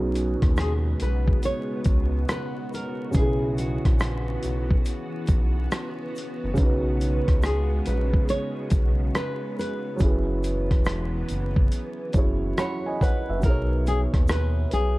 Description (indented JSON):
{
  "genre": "lo-fi hip hop",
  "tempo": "70 BPM",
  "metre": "4/4",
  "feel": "swing 65% on 16ths",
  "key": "unclear",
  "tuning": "A4 = 439 Hz",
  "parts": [
    { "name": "felt-muted upright piano", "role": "accompaniment", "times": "0.0-15.0 s", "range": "B2 to B5", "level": "-30 LUFS", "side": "right 2 dB", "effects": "cassette tape, low-pass filter" },
    { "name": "soft string machine", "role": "sustained chords", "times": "0.5-13.4 s", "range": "C#3 to F#4", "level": "-34 LUFS", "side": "equal", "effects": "ensemble chorus, low-pass filter" },
    { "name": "smooth synth bass", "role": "bass", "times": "0.0-15.0 s", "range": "E1 to D#2", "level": "-26 LUFS", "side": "equal", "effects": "none" },
    { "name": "dusty soul sampler-style drum kit", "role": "drums", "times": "0.2-15.0 s", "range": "hi-hat, kick drum, rim click", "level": "-22 LUFS", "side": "equal", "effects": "none" },
    { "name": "egg shaker", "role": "percussion", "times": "0.2-15.0 s", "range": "none", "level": "-53 LUFS", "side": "left 4 dB", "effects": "none" },
    { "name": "nylon-string guitar", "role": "melody", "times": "0.6-15.0 s", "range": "F#4 to C#5", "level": "-31 LUFS", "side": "left 1 dB", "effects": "low-pass filter" }
  ],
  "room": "small room ambience",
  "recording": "dark, warm production, vinyl crackle",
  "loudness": "-22 LUFS",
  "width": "side -20 dB against mid",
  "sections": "0.0-13.4 A section; 13.4-15.0 B section",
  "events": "none",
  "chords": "0.0 G#m7/B; 3.1 F#7sus4; 6.6 G#m11; 10.0 F#7sus4; 13.4 B69",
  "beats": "0.57 1.43 2.29 | 3.15 4.00 4.86 5.72 | 6.58 7.43 8.29 9.15 | 10.00 10.86 11.72 12.57 | 13.43 14.29"
}